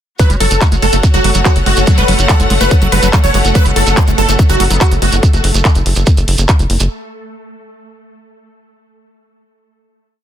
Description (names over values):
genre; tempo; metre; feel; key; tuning
psychedelic trance; 143 BPM; 4/4; straight; F# minor; A4 = 442 Hz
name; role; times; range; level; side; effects
supersaw stab; melody; 0.2-5.2 s; F#4 to C#5; -17 LUFS; equal; phaser, sidechain pumping, digital delay
swarming drone; sustained chords; 1.0-5.2 s; A3 to A4; -23 LUFS; equal; built-in reverb, sidechain pumping
liquid acid bass; riff; 0.2-5.1 s; F#3 to A3; -20 LUFS; right 1 dB; phaser, auto-pan, sidechain pumping, tape echo
big-room dance drum kit; drums; 0.2-6.9 s; handclaps, hi-hat; -19 LUFS; equal; none
electronic kick drum; drums; 0.2-6.6 s; none; -10 LUFS; equal; none
shekere; percussion; 0.2-6.9 s; none; -22 LUFS; right 6 dB; none
clear symphonic string section; texture; 0.2-5.2 s; F#4 to F#5; -21 LUFS; left 3 dB; sidechain pumping
tight sequencer bass; bass; 0.3-6.9 s; F#1; -14 LUFS; equal; none
metallic wobble bass; second line; 4.7-4.9 s; B3; -30 LUFS; left 2 dB; none
room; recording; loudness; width
little or no reverb; dense, heavily limited modern master; -9 LUFS; side -10 dB against mid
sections
0.2-6.9 drop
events
drop 0.2-6.9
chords
0.2 F#5